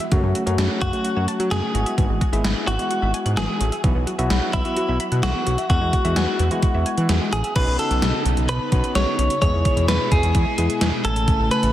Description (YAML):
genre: synth-pop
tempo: 129 BPM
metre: 4/4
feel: straight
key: unclear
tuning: A4 = 443 Hz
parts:
  - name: analog pluck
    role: arpeggios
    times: 0.0-7.6 s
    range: C#3 to F#6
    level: -30 LUFS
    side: equal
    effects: chorus, phaser, shimmer reverb, digital delay
  - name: gated 80s digital drum machine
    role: drums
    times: 0.0-11.7 s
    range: crash cymbal, hi-hat, kick drum, snare drum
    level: -23 LUFS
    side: equal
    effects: gated reverb, gated reverb snare, overdrive
  - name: bell-like tine electric piano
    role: accompaniment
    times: 0.1-11.7 s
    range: F#3 to G#5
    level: -27 LUFS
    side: left 2 dB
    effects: medium stereo tremolo, shimmer reverb
  - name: fat analog bass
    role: bass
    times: 0.1-11.7 s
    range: G#1 to F#3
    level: -22 LUFS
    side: equal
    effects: none
  - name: direct-recorded clean electric guitar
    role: melody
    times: 0.8-11.7 s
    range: E4 to C#5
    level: -24 LUFS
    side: equal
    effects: shimmer reverb, digital delay
  - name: string machine, violins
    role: sustained chords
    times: 7.6-11.7 s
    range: B2 to G#5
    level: -27 LUFS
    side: equal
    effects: ensemble chorus, shimmer reverb
room: moderate echo chamber reverb, RT60 2.3 s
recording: dense, heavily limited modern master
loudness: -18 LUFS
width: side -12 dB against mid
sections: 0.0-7.6 A section; 7.6-11.7 B section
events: none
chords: 0.1 F#m; 1.7 Eadd9/G#; 3.8 Bsus4; 5.7 Eadd9; 7.6 Badd9; 9.4 E; 11.0 Amaj7